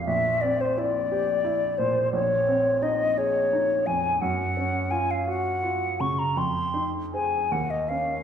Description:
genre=classical, impressionist duo for flute and grand piano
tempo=57 BPM (dotted quarters)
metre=6/8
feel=uneven beats, rubato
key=unclear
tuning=A4 = 440 Hz
part: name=hollow concert flute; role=melody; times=0.0-8.2 s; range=C5 to Db6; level=-24 LUFS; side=left 2 dB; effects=none
part: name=clear grand piano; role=accompaniment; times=0.0-8.2 s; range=Bb1 to C5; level=-28 LUFS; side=right 2 dB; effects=none
room=wet recital hall reverb, RT60 1.5 s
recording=heard from further back in the room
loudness=-22 LUFS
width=side -8 dB against mid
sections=0.0-8.2 A section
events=none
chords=0.1 C9/Bb; 2.1 Bbm11; 4.2 Gb5; 6.4 Fm7; 7.5 Eb7(no3)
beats=| 0.08 1.11 | 2.13 3.17 | 4.21 5.27 | 6.36 7.52

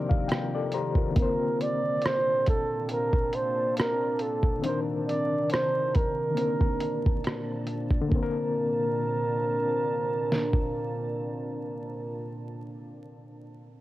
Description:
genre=lo-fi hip hop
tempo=69 BPM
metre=4/4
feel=swing 56% on 16ths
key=Bb major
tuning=A4 = 442 Hz
part: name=barky reed electric piano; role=accompaniment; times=0.0-13.8 s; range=C3 to Bb5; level=-32 LUFS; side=left 4 dB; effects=overdrive, fast tremolo, cassette tape
part: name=deep dark ambient pad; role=sustained chords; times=0.0-12.4 s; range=Bb2 to A5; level=-34 LUFS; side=equal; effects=chorus, built-in reverb, cassette tape
part: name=lo-fi sampler-style drum kit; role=drums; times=0.1-10.7 s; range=hi-hat, kick drum, rim click, snare drum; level=-26 LUFS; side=equal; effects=cassette tape
part: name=breathy flugelhorn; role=melody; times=1.2-12.4 s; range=A4 to D5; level=-28 LUFS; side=right 2 dB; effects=cassette tape
room=light reverb, digital ambience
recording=home recording on cassette, vinyl crackle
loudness=-25 LUFS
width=side -16 dB against mid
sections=0.0-8.1 A section; 8.1-11.6 B section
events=none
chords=0.0 F9sus4/C; 1.2 Bbmaj9; 4.6 Cm9; 6.4 Bbmaj9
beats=0.29 | 1.16 2.03 2.90 3.77 | 4.64 5.51 6.38 7.25 | 8.12 8.99 9.86 10.73

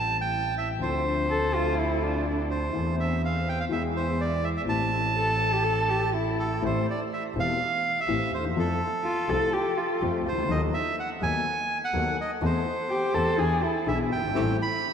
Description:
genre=tango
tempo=124 BPM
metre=4/4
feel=rubato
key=A minor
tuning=A4 = 440 Hz
part: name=bandoneon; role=melody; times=0.0-14.9 s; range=A4 to B5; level=-28 LUFS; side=right 2 dB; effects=tape echo
part: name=dark grand piano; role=accompaniment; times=0.0-14.6 s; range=E1 to A4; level=-30 LUFS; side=left 5 dB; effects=ensemble chorus
part: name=clear double bass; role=bass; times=0.0-14.6 s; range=E1 to F2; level=-30 LUFS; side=right 2 dB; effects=none
part: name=dark cello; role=second line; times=1.3-14.0 s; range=D4 to A4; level=-29 LUFS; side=equal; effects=tape echo
part: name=bandoneon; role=stabs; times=14.3-14.6 s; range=A3 to G4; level=-36 LUFS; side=right 4 dB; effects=tape echo
room=wet lush hall reverb, RT60 2.9 s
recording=dreamy mix soaked in reverb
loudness=-24 LUFS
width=side -7 dB against mid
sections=0.0-6.6 A section; 6.6-14.9 A section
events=none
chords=0.0 Am7; 0.8 Dm7; 2.8 Am/E; 3.7 E; 4.7 Am7; 8.6 F; 10.5 B7/D#; 12.4 Am/E; 13.4 E7; 14.4 Am7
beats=0.33 | 0.81 1.30 1.78 2.27 | 2.75 3.23 3.71 4.20 | 4.68 5.16 5.64 6.13 | 6.62 7.11 7.60 8.08 | 8.56 9.05 9.53 10.01 | 10.49 10.97 11.45 11.94 | 12.42 12.90 13.38 13.87 | 14.35 14.84

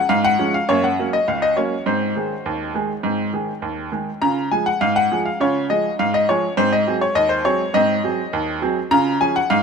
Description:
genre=ragtime piano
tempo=102 BPM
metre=2/4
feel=straight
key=Db major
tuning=A4 = 441 Hz
part: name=bright upright piano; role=solo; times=0.0-9.6 s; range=Db2 to Bb5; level=-17 LUFS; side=equal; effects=none
room=light reverb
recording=none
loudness=-17 LUFS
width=side -6 dB against mid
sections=0.0-9.6 A section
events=none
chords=0.0 Db; 0.7 Gb; 1.9 Ab; 4.2 Db; 6.6 Ab7; 8.9 Db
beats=0.10 | 0.68 1.27 | 1.86 2.45 | 3.04 3.63 | 4.22 4.81 | 5.39 5.98 | 6.57 7.15 | 7.74 8.32 | 8.91 9.49

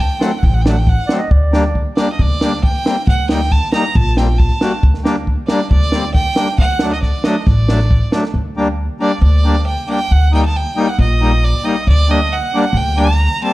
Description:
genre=klezmer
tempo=136 BPM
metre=4/4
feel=straight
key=unclear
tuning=A4 = 441 Hz
part: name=clear violin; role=melody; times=0.0-13.5 s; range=D5 to Bb5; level=-20 LUFS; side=right 2 dB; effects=none
part: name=upright bass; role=bass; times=0.0-13.3 s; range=A1 to D2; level=-14 LUFS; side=equal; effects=none
part: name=accordion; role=accompaniment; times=0.2-13.5 s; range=F#3 to F#4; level=-19 LUFS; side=left 2 dB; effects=none
part: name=compact cocktail drum kit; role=drums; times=0.2-8.3 s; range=kick drum, snare drum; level=-16 LUFS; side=equal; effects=none
part: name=warm clarinet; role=second line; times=1.1-1.9 s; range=D5 to Eb5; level=-23 LUFS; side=right 2 dB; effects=none
room=light reverb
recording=dark, warm production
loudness=-12 LUFS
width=side -18 dB against mid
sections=0.0-8.3 A section; 8.3-13.5 A section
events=none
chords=0.0 D; 1.3 Gm/D; 3.1 Eb/D; 4.8 Gm/D; 6.6 D; 8.3 Gm/D; 10.1 Eb/D; 11.9 Gm/D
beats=0.42 0.86 | 1.30 1.75 2.19 2.63 | 3.07 3.51 3.95 4.39 | 4.83 5.27 5.71 6.15 | 6.59 7.03 7.47 7.91 | 8.35 8.79 9.23 9.67 | 10.11 10.55 10.99 11.43 | 11.87 12.31 12.75 13.19

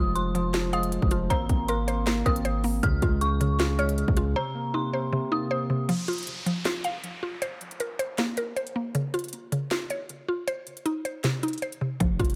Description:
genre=hip hop, trap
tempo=157 BPM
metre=4/4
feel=half-time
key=unclear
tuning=A4 = 443 Hz
part: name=dark detuned synth bell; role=second line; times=0.0-5.9 s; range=Bb5 to F6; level=-34 LUFS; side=equal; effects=chorus, tape echo
part: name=mellow tine electric piano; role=accompaniment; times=0.0-5.9 s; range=C3 to C4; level=-32 LUFS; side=equal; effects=none
part: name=mallet-like synth pluck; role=arpeggios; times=0.0-12.4 s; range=C3 to F5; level=-32 LUFS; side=equal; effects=chorus, tape echo
part: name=hard-hitting 808-style bass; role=bass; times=0.0-4.3, 12.0-12.4 s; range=F1 to Db2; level=-31 LUFS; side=equal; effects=none
part: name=trap drum kit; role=drums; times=0.2-12.3 s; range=hi-hat, kick drum, snare drum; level=-31 LUFS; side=equal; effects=none
part: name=downlifter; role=sound effects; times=5.9-8.9 s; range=none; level=-41 LUFS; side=equal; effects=none
room=light reverb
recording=none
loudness=-27 LUFS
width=mono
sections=0.0-5.9 A section; 5.9-12.4 B section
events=break 4.4-5.9, 5.9-12.0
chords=0.0 Fm7; 1.3 Abadd9; 2.8 Db; 4.4 Cm7; 5.9 N.C.; 7.4 Bbsus2; 8.9 Db; 10.5 Cm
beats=0.16 0.54 0.92 | 1.30 1.69 2.07 2.45 | 2.83 3.21 3.60 3.98 | 4.36 4.74 5.12 5.51 | 5.89 6.27 6.65 7.04 | 7.42 7.80 8.18 8.56 | 8.95 9.33 9.71 10.09 | 10.48 10.86 11.24 11.62 | 12.00

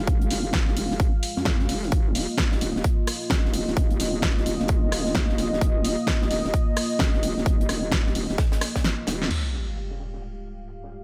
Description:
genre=bass house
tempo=130 BPM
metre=4/4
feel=swing 62% on 16ths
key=unclear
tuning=A4 = 440 Hz
part: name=dark analog pad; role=sustained chords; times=0.0-11.0 s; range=Ab3 to F5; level=-32 LUFS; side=equal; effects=chorus, sidechain pumping
part: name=vowel-sweep wobble bass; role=bass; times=0.0-9.3 s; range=Eb1 to F2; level=-30 LUFS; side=equal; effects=chorus, overdrive, sidechain pumping
part: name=crisp fusion drum kit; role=drums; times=0.1-11.0 s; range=hi-hat, snare drum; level=-40 LUFS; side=equal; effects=sidechain pumping on hats, high-pass filter on hats, low-pass filter on hats, high-pass filter on snare, low-pass filter on snare, high-pass filter on room, low-pass filter on room
part: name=electronic kick drum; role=drums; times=0.1-8.8 s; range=none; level=-25 LUFS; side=equal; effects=none
part: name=big-room dance drum kit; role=drums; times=0.3-9.4 s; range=crash cymbal, hi-hat, rim click, snare drum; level=-31 LUFS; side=equal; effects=none
part: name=sub drop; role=sound effects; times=9.3-11.0 s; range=none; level=-34 LUFS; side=equal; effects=none
room=light reverb, digital ambience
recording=none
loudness=-24 LUFS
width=mono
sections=0.0-9.3 A section; 9.3-11.0 B section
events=kick drops out 8.8-9.3; drum fill 8.8-9.3; band accent 9.2; impact 9.3-11.0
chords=0.0 Fm; 1.9 Ebsus2; 9.3 Fmadd9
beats=| 0.07 0.54 1.00 1.46 | 1.92 2.38 2.84 3.31 | 3.77 4.23 4.69 5.15 | 5.61 6.08 6.54 7.00 | 7.46 7.92 8.38 8.84 | 9.31 9.77 10.23 10.69

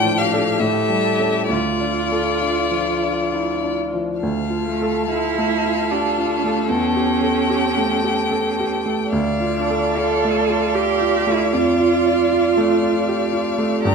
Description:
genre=classical, slow romantic movement for piano quartet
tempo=64-80 BPM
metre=3/4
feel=rubato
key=D minor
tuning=A4 = 435 Hz
part: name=rich violin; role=melody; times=0.0-13.9 s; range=D5 to Bb5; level=-24 LUFS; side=left 7 dB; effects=none
part: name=warm cello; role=second line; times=0.0-13.9 s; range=A3 to A4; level=-22 LUFS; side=right 7 dB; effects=none
part: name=warm violin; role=second line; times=0.0-13.9 s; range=D4 to D5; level=-26 LUFS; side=left 1 dB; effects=none
part: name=clear grand piano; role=accompaniment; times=0.0-13.9 s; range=D2 to D5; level=-20 LUFS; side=equal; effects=none
room=moderate recital hall reverb, RT60 1.4 s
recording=none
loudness=-17 LUFS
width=side -5 dB against mid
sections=0.0-4.2 A section; 4.2-13.9 A section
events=none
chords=0.0 Dm/A; 0.6 A7; 1.5 Dm; 6.7 A7/E; 9.1 Dm; 11.5 Dm/F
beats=0.61 | 1.50 2.42 3.32 | 4.21 5.10 5.91 | 6.69 7.50 8.31 | 9.12 9.98 10.74 | 11.52 12.30 13.07 | 13.84

